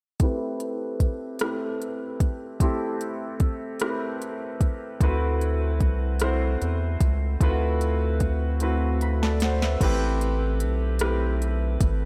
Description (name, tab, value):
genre	slow six-eight R&B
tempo	50 BPM (dotted quarters)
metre	6/8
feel	straight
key	A dorian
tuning	A4 = 438 Hz
part	clear concert grand piano	accompaniment	0.2-12.1 s	A3 to B5	-31 LUFS	equal	lush chorus, low-pass filter
part	smooth R&B drum kit	drums	0.2-12.0 s	crash cymbal, hi-hat, kick drum, rim click, snare drum	-27 LUFS	equal	overdrive
part	round analog bass	bass	5.0-12.1 s	G#1 to E2	-27 LUFS	equal	none
room	moderate lush hall reverb, RT60 3.0 s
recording	dreamy mix soaked in reverb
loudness	-25 LUFS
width	mono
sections	0.2-9.8 A section; 9.8-12.1 B section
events	filter sweep on grand piano 0.2-9.8; drum fill 8.6-9.8; grand piano fill 8.6-9.8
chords	0.2 Am7; 5.0 D13; 9.8 Am7